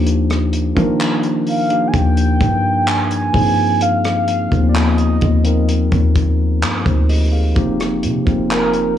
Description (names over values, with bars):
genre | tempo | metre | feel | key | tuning
contemporary R&B | 64 BPM | 4/4 | straight | unclear | A4 = 440 Hz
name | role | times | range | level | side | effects
mellow tine electric piano | accompaniment | 0.0-9.0 s | F3 to F5 | -19 LUFS | left 1 dB | fast stereo tremolo
warm 808-style bass | bass | 0.0-9.0 s | F1 to Eb3 | -17 LUFS | left 1 dB | none
warm soul drum kit | drums | 0.1-9.0 s | handclaps, hi-hat, kick drum, rim click | -21 LUFS | equal | none
mellow horn-like synth lead | melody | 1.5-8.9 s | Bb4 to Ab5 | -19 LUFS | right 2 dB | chorus, phaser, slapback echo
room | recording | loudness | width
small room ambience | worn, warbling old tape, cassette tape, warbly pitch drift | -13 LUFS | side -10 dB against mid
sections
0.0-9.0 A section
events
none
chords
0.0 Ebmaj9; 3.3 Ab6/Eb; 7.6 F9sus4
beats
| 0.06 1.00 1.94 2.87 | 3.81 4.75 5.68 6.62 | 7.56 8.50